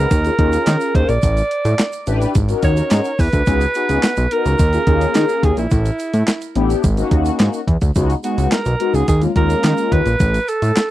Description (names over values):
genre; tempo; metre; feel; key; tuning
early-eighties boogie funk; 107 BPM; 4/4; straight; unclear; A4 = 438 Hz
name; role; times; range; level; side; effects
breathy alto saxophone; melody; 0.0-10.9 s; E4 to D5; -21 LUFS; right 2 dB; tape echo
mellow synth brass; accompaniment; 0.0-10.1 s; G#3 to B4; -20 LUFS; left 4 dB; chorus, phaser
fat analog bass; bass; 0.0-10.7 s; G#1 to D#3; -17 LUFS; equal; none
crisp 8-bit digital drum machine; drums; 0.1-10.9 s; handclaps, hi-hat, kick drum, snare drum; -18 LUFS; equal; overdrive
tube shaker; percussion; 0.1-10.9 s; none; -38 LUFS; right 16 dB; none
room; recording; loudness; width
little or no reverb; dry, close 1970s-style studio recording; -14 LUFS; side -14 dB against mid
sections
0.0-10.9 A section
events
none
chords
0.1 D#9sus4; 1.2 A9sus4; 2.4 G#9sus4; 3.5 C#9sus4; 4.6 D#9sus4; 5.7 A9sus4; 6.8 G#9sus4; 8.0 C#9sus4; 9.1 D#9sus4; 10.2 Asus2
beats
0.11 0.67 | 1.23 1.79 2.35 2.91 | 3.47 4.03 4.59 5.16 | 5.72 6.28 6.84 7.40 | 7.96 8.52 9.08 9.64 | 10.20 10.76